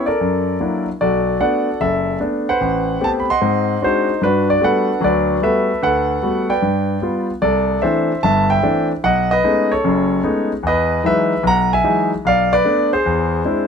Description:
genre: solo jazz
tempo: 149 BPM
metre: 4/4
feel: swing 66% on 8ths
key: G major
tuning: A4 = 441 Hz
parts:
  - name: warm concert grand piano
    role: solo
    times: 0.0-13.7 s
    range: F#1 to C6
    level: -15 LUFS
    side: equal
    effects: none
room: light reverb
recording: close, detailed microphones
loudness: -15 LUFS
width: side -6 dB against mid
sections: 0.0-7.4 A section; 7.4-13.7 B section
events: none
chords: 0.2 F#7alt; 1.0 Bm7; 2.6 Am9; 3.4 Ab7#11; 4.2 Gmaj9; 6.6 G7; 7.4 C69; 9.0 B13; 10.6 Emaj9; 12.2 Bm7b5; 13.0 Eaug7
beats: 0.19 0.59 | 0.99 1.40 1.80 2.20 | 2.60 3.00 3.41 3.81 | 4.21 4.61 5.01 5.42 | 5.82 6.22 6.62 7.03 | 7.43 7.83 8.23 8.63 | 9.03 9.44 9.84 10.24 | 10.64 11.04 11.44 11.84 | 12.24 12.64 13.05 13.45

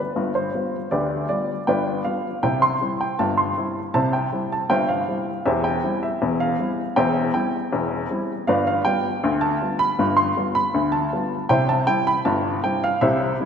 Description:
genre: ragtime piano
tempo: 79 BPM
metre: 2/4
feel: straight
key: C major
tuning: A4 = 441 Hz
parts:
  - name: warm upright piano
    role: solo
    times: 0.0-13.5 s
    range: E1 to C6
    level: -20 LUFS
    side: equal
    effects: none
room: wet concert hall reverb, RT60 2.6 s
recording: none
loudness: -20 LUFS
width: side -7 dB against mid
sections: 0.0-13.5 A section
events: none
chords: 0.0 G7; 2.4 C; 5.5 C/E; 8.5 G7; 11.5 C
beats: 0.16 | 0.92 1.68 | 2.44 3.19 | 3.94 4.70 | 5.46 6.21 | 6.97 7.72 | 8.48 9.23 | 9.99 10.74 | 11.50 12.26 | 13.02

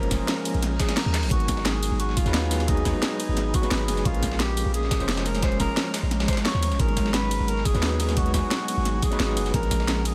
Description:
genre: liquid drum and bass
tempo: 175 BPM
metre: 4/4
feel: straight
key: G# dorian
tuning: A4 = 439 Hz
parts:
  - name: mellow tenor saxophone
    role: melody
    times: 0.0-10.1 s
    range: D#4 to C#5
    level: -33 LUFS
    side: equal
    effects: tape echo
  - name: overdriven tine electric piano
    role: accompaniment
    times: 0.0-10.1 s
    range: E#3 to B#4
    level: -32 LUFS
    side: equal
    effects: medium tremolo, analog delay
  - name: glassy FM pad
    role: sustained chords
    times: 0.0-10.1 s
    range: G#3 to B5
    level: -36 LUFS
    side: equal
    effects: ensemble chorus, built-in reverb
  - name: long sustained 808-style bass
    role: bass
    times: 0.0-10.1 s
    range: E#1 to D#2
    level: -29 LUFS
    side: equal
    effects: tube saturation
  - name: drum and bass drum kit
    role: drums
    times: 0.0-10.1 s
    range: handclaps, hi-hat, ride cymbal, snare drum, tambourine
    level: -32 LUFS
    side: equal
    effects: overdrive
  - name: dusty soul sampler-style drum kit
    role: drums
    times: 0.1-10.1 s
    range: hi-hat, snare drum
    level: -37 LUFS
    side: equal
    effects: high-pass filter on hats, high-pass filter on snare
  - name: electronic kick drum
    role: drums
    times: 0.1-9.8 s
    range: none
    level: -28 LUFS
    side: equal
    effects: overdrive
  - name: reverse cymbal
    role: sound effects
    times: 0.7-1.3 s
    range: none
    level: -42 LUFS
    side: equal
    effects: none
room: light reverb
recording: none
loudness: -24 LUFS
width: mono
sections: 0.0-10.1 A section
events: reverse cymbal 0.7-1.3; drum fill 1.1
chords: 0.0 A#m7; 1.3 G#m7; 4.1 A#m7; 6.8 G#m7; 9.5 A#m7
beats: 0.28 0.62 0.97 | 1.31 1.65 2.00 2.34 | 2.68 3.02 3.37 3.71 | 4.05 4.40 4.74 5.08 | 5.42 5.77 6.11 6.45 | 6.80 7.14 7.48 7.83 | 8.17 8.51 8.85 9.20 | 9.54 9.88

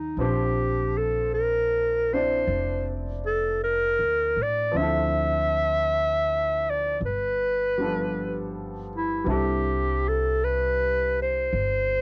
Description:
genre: jazz ballad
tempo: 53 BPM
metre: 4/4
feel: swing 69% on 8ths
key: C major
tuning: A4 = 440 Hz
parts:
  - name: warm clarinet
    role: melody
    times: 0.0-12.0 s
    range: Eb4 to E5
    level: -26 LUFS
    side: equal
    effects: cassette tape
  - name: clear upright piano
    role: accompaniment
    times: 0.0-12.0 s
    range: F3 to D5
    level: -34 LUFS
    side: equal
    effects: cassette tape
  - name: upright bass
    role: bass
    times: 0.0-12.0 s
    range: F1 to A2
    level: -33 LUFS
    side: equal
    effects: none
room: light reverb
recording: home recording on cassette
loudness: -25 LUFS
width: mono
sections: 0.0-12.0 A section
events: none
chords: 0.2 Bbadd9; 4.8 Dm9; 7.0 G9; 9.3 C69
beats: | 0.20 1.34 2.49 3.62 | 4.75 5.89 7.02 8.14 | 9.26 10.39 11.51

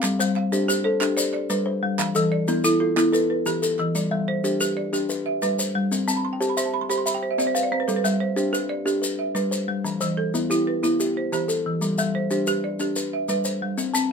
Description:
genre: southern african traditional, mbira-style interlocking cycle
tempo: 122 BPM (dotted quarters)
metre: 12/8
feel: straight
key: G mixolydian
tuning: A4 = 440 Hz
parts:
  - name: folk marimba with hard mallets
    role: arpeggios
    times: 0.0-14.1 s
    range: E3 to C6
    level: -24 LUFS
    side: right 3 dB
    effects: none
  - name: kalimba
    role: arpeggios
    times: 0.0-14.1 s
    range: E3 to A5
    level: -24 LUFS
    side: left 3 dB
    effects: none
  - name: group handclap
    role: percussion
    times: 0.0-3.9 s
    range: none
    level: -29 LUFS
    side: right 6 dB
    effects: none
  - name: maracas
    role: percussion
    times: 0.0-14.1 s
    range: none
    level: -30 LUFS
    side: left 3 dB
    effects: none
room: light reverb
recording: minimal, uncompressed stereo recording, faint mains hum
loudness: -21 LUFS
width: side -6 dB against mid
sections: 0.0-4.0 A section; 4.0-14.1 A section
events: marimba fill 6.0-7.9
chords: 0.0 G; 2.0 Em; 4.0 G; 5.9 C/G; 9.9 Em; 11.8 G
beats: | 0.03 0.52 1.01 1.50 | 1.99 2.48 2.97 3.46 | 3.95 4.44 4.93 5.42 | 5.92 6.41 6.90 7.39 | 7.88 8.38 8.87 9.36 | 9.85 10.34 10.84 11.33 | 11.82 12.31 12.80 13.29 | 13.78

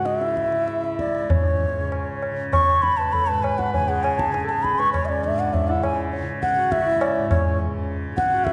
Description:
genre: indian classical, Hindustani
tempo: 101 BPM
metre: 4/4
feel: uneven beats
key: C# raga bhairavi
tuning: A4 = 440 Hz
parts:
  - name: mellow bansuri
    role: melody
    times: 0.0-8.5 s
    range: C#5 to C#6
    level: -24 LUFS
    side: equal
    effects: none
  - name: hand-pumped harmonium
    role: second line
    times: 0.0-8.5 s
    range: C#4 to C#5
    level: -32 LUFS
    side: equal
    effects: none
  - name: tanpura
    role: drone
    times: 0.0-8.5 s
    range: C#2 to C#3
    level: -31 LUFS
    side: equal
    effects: none
  - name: tabla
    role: percussion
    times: 0.1-8.5 s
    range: none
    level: -28 LUFS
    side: equal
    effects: none
room: wet concert hall reverb, RT60 2.0 s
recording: recorded in a church or concert hall, nothing above 10.5 kHz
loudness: -22 LUFS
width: mono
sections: 0.0-1.3 A section; 1.3-8.5 B section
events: speeding up 0.0-8.5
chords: none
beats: 0.06 0.68 | 1.30 1.92 2.53 3.14 | 3.74 4.35 4.95 5.54 | 6.13 6.72 7.30 7.88 | 8.46

